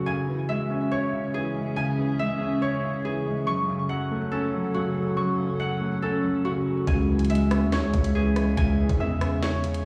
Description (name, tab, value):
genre	hip hop, drill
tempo	141 BPM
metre	4/4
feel	half-time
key	C# minor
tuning	A4 = 440 Hz
part	dark concert grand piano	accompaniment	0.0-9.8 s	F#2 to C#5	-30 LUFS	equal	none
part	Celtic harp	arpeggios	0.0-9.8 s	F#4 to C#6	-32 LUFS	equal	tape echo
part	warbly tape-like pad	sustained chords	1.0-9.8 s	C#3 to F#5	-35 LUFS	equal	chorus, built-in reverb, phaser
part	growling 808-style bass	bass	6.9-9.8 s	C#2 to G#2	-26 LUFS	equal	none
part	drill drum kit	drums	6.9-9.8 s	hi-hat, kick drum, rim click, snare drum	-29 LUFS	equal	none
room	light reverb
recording	played on a big sound system in a bare room, large studio reverb, vinyl crackle, small room ambience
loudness	-25 LUFS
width	mono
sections	0.1-9.8 A section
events	none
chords	0.1 C#m; 3.5 F#m; 6.9 C#m